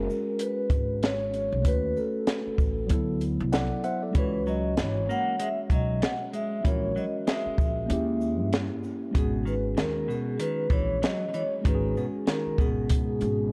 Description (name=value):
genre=hip hop, jazz-hop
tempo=96 BPM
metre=4/4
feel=swing 59% on 16ths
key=G# minor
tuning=A4 = 440 Hz
part: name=vibraphone with soft mallets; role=melody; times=0.0-13.5 s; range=G#4 to F#5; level=-33 LUFS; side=equal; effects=none
part: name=mellow tine electric piano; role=accompaniment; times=0.0-13.5 s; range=F#3 to F#5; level=-34 LUFS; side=equal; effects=none
part: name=upright bass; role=bass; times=0.0-13.5 s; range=G#1 to G#2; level=-34 LUFS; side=equal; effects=none
part: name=compact cocktail drum kit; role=drums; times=0.1-13.4 s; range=hi-hat, kick drum, shaker, snare drum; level=-30 LUFS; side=equal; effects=none
part: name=clean electric guitar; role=second line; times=4.2-13.5 s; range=B2 to B3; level=-36 LUFS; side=equal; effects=none
room=light reverb, small room reverb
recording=dark, warm production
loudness=-27 LUFS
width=mono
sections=0.0-13.5 A section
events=tine electric piano fill 3.2-4.2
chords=0.0 B5; 1.6 D#m7b5; 2.9 D9; 4.2 C#5; 6.7 A#m7b5; 7.9 D#7b9; 9.2 G#m7